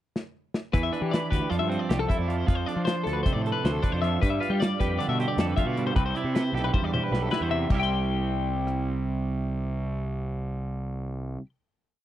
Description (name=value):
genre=math rock and midwest emo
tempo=310 BPM (eighths)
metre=9/8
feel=straight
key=C major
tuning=A4 = 440 Hz
part: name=modern studio drum kit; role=drums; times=0.2-8.8 s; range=crash cymbal, hi-hat, kick drum, rim click, snare drum, toms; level=-27 LUFS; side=left 1 dB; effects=none
part: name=twelve-string electric guitar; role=accompaniment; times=0.7-11.5 s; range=G2 to D5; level=-30 LUFS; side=right 7 dB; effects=none
part: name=twelve-string electric guitar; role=arpeggios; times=0.7-11.5 s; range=G4 to C6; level=-31 LUFS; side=left 9 dB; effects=spring reverb
part: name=fuzz picked electric bass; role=bass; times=0.7-11.4 s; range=B1 to G3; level=-29 LUFS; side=equal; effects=overdrive
room=little or no reverb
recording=dry, close 1970s-style studio recording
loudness=-24 LUFS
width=side -12 dB against mid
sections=0.0-0.7 pickup bar; 0.7-7.7 A section; 7.7-11.2 final chord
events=drum fill 0.1-0.7, 6.5-7.7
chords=0.0 N.C.; 0.7 Em7; 1.5 Dm9; 2.5 F6; 4.2 G7; 6.0 Cmaj7; 7.7 C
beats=0.14 0.34 0.53 | 0.73 0.92 1.12 1.31 1.50 1.70 1.89 2.09 2.28 | 2.48 2.67 2.86 3.06 3.25 3.45 3.64 3.83 4.03 | 4.22 4.41 4.61 4.80 4.99 5.19 5.38 5.57 5.77 | 5.96 6.15 6.35 6.54 6.73 6.92 7.12 7.31 7.50 | 7.70 7.89 8.08 8.28 8.47 8.66 8.85 9.05 9.24 | 9.43 9.63 9.82 10.01 10.21 10.40 10.59 10.79 10.98